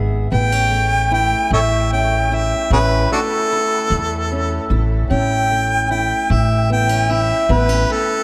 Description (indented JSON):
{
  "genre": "acoustic country blues, solo or duo",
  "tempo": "50 BPM (dotted quarters)",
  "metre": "12/8",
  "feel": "straight",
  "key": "unclear",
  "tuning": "A4 = 440 Hz",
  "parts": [
    { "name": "fingerpicked steel-string acoustic guitar", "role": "accompaniment", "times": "0.0-8.2 s", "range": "A2 to G#4", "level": "-26 LUFS", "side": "equal", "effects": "none" },
    { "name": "upright bass", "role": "bass", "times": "0.0-7.8 s", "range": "G#1 to E2", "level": "-21 LUFS", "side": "equal", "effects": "none" },
    { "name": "warm harmonica", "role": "melody", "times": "0.3-8.2 s", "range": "D4 to G5", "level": "-20 LUFS", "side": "equal", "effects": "none" }
  ],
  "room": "wet cathedral reverb, RT60 6.8 s",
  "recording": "in a vast, echoing space",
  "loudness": "-17 LUFS",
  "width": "mono",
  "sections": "0.0-8.2 A section",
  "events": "harmonica solo 0.0-8.2",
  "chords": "0.3 A"
}